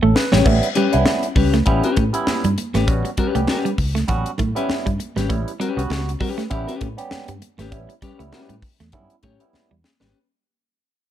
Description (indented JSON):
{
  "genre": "funk",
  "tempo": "99 BPM",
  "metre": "4/4",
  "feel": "swing 56% on 16ths",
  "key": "A mixolydian",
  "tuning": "A4 = 441 Hz",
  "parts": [
    { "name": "clean electric guitar", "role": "riff", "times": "0.0-10.1 s", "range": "G3 to A3", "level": "-22 LUFS", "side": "right 5 dB", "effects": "none" },
    { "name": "barky tine electric piano", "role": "stabs", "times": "0.0-9.7 s", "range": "G3 to B4", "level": "-25 LUFS", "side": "right 3 dB", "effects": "tube saturation, phaser" },
    { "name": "fingered electric bass", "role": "bass", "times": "0.0-10.1 s", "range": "G#1 to A2", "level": "-22 LUFS", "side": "equal", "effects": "none" },
    { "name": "crisp fusion drum kit", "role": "drums", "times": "0.2-10.1 s", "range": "crash cymbal, hi-hat, kick drum, snare drum", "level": "-23 LUFS", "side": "left 1 dB", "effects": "none" },
    { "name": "clean electric guitar", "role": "accompaniment", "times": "0.3-10.2 s", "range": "C#4 to C#5", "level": "-23 LUFS", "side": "left 7 dB", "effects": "none" },
    { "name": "congas", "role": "percussion", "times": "0.3-10.1 s", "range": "none", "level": "-30 LUFS", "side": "right 4 dB", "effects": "none" }
  ],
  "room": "light reverb, small room ambience",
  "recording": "none",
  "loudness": "-17 LUFS",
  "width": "side -11 dB against mid",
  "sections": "0.5-10.1 A section",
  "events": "drum fill 0.0-0.5, 9.5-10.1; fade-out 0.5-10.1",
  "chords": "0.5 A9",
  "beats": "| 0.46 1.06 1.67 2.27 | 2.88 3.48 4.09 4.70 | 5.30 5.91 6.51 7.12 | 7.72 8.33 8.93 9.54"
}